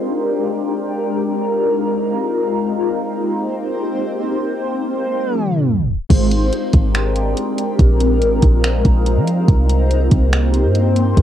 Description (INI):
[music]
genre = hip hop, atmospheric cloud-rap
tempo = 142 BPM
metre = 4/4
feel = half-time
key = Ab lydian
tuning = A4 = 442 Hz
[part]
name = shimmering ambient pad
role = sustained chords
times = 0.0-11.2 s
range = Ab3 to C5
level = -18 LUFS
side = left 1 dB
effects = chorus, built-in reverb, phaser, low-pass filter, cassette tape
[part]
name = clean 808-style bass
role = bass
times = 6.1-11.2 s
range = F1 to F3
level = -16 LUFS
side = equal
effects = none
[part]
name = smooth R&B drum kit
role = drums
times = 6.1-11.2 s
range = crash cymbal, finger snaps, hi-hat, kick drum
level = -15 LUFS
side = equal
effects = cassette tape
[sound]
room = digital ambience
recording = home recording on cassette, tape stop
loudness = -15 LUFS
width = side -11 dB against mid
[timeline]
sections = 0.0-6.1 A section; 6.1-11.2 B section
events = filter sweep on ambient pad 0.0-6.1; tape stop 5.3-6.1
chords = 0.0 Abmaj9#11; 1.0 Bb9sus4; 2.7 Cm7; 4.4 Fm7; 6.1 Abmaj9#11; 7.8 Bb9sus4; 9.5 Cm7